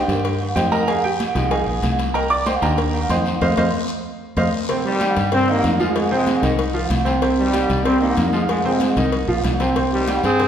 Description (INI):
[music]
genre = latin, salsa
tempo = 189 BPM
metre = 4/4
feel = straight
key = C minor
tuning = A4 = 440 Hz
[part]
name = clear grand piano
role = accompaniment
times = 0.0-10.5 s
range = C3 to D6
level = -21 LUFS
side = right 1 dB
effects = none
[part]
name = fingered electric bass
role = bass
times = 0.0-10.5 s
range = Bb1 to G2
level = -23 LUFS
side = left 1 dB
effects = none
[part]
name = congas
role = percussion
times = 0.1-10.5 s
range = none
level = -28 LUFS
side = left 1 dB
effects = none
[part]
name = cowbell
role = percussion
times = 0.1-10.5 s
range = none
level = -30 LUFS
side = left 5 dB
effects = none
[part]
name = guiro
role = percussion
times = 0.1-10.5 s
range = none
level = -34 LUFS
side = left 5 dB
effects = none
[part]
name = agogo bells and timbales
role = percussion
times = 0.2-10.5 s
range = none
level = -26 LUFS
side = right 3 dB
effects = none
[part]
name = brilliant trombone section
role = melody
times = 4.9-10.5 s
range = Eb3 to Ab4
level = -21 LUFS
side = left 1 dB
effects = none
[sound]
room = wet recital hall reverb, RT60 1.5 s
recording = recorded in a church or concert hall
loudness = -17 LUFS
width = side -9 dB against mid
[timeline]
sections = 0.0-4.7 A section; 4.7-10.5 B section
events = grand piano solo 0.0-4.7; band accent 3.4-4.7; drum fill 4.1-4.7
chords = 0.0 Cm7; 0.9 Fm7; 2.1 Cm7; 3.4 F5; 4.7 Cm7; 6.0 Fm7; 7.2 Cm7; 8.5 Fm7; 9.8 Cm